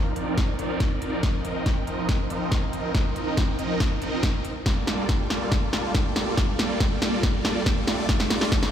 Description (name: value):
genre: future bass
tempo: 140 BPM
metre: 4/4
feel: half-time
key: unclear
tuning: A4 = 440 Hz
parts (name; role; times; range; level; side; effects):
- supersaw chords; riff; 0.0-8.7 s; F3 to G5; -27 LUFS; right 1 dB; phaser, sidechain pumping, low-pass filter, dub echo
- big-room dance drum kit; drums; 0.2-8.7 s; hi-hat, snare drum; -27 LUFS; equal; none
- electronic kick drum; drums; 0.4-8.6 s; none; -24 LUFS; equal; none
room: moderate huge ambient reverb, RT60 4.1 s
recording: played on a big sound system in a bare room, large studio reverb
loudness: -22 LUFS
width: side -9 dB against mid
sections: 0.0-8.7 A section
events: build-up 0.0-8.7; drum fill 0.0-8.7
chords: 0.0 Cm11; 1.2 F7sus4; 4.4 Gm9; 7.9 Dm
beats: 0.38 0.80 | 1.23 1.66 2.09 2.52 | 2.95 3.38 3.80 4.23 | 4.66 5.09 5.52 5.95 | 6.38 6.80 7.23 7.66 | 8.09 8.52